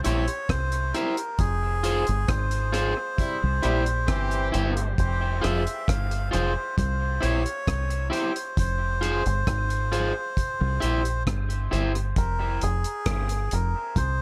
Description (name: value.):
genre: dub reggae.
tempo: 67 BPM.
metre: 4/4.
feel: straight.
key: F harmonic minor.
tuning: A4 = 440 Hz.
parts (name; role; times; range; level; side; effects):
melodica; melody; 0.0-14.2 s; Ab4 to F5; -32 LUFS; equal; dub echo.
electric guitar at the edge of break-up; accompaniment; 0.0-11.9 s; E4 to C5; -33 LUFS; equal; dub echo.
deep dub fingered electric bass; bass; 0.0-14.2 s; F1 to C2; -28 LUFS; equal; none.
deep reggae drum kit; drums; 0.0-14.2 s; hi-hat, kick drum, rim click; -31 LUFS; equal; none.
warm horn section; second line; 3.2-4.9 s; C3 to G4; -37 LUFS; equal; dub echo.
room: light reverb, studio ambience.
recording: none.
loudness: -26 LUFS.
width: mono.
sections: 0.0-14.2 A section.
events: band accent 1.4-5.0.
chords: 0.0 C; 1.4 Fm; 3.2 C; 5.0 Fm; 6.8 C; 8.6 Fm; 10.4 C; 12.2 Fm.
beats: 0.49 | 1.39 2.29 3.18 4.08 | 4.98 5.88 6.77 7.67 | 8.57 9.47 10.37 11.26 | 12.16 13.06 13.96.